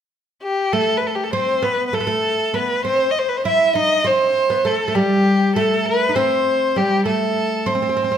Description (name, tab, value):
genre	turkish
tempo	199 BPM (eighths)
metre	7/8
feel	straight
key	unclear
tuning	A4 = 440 Hz
part	rich violin	melody	0.4-8.2 s	G4 to E5	-18 LUFS	left 1 dB	none
part	oud	second line	0.7-8.2 s	G3 to E4	-20 LUFS	right 2 dB	none
room	light reverb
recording	minimal, uncompressed stereo recording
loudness	-16 LUFS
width	side -8 dB against mid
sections	0.7-8.2 A section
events	none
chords	none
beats	0.12 0.43 | 0.73 1.03 1.33 1.64 1.94 2.24 2.54 | 2.85 3.15 3.45 3.75 4.05 4.35 4.66 | 4.96 5.26 5.56 5.86 6.16 6.46 6.77 | 7.07 7.37 7.67 7.97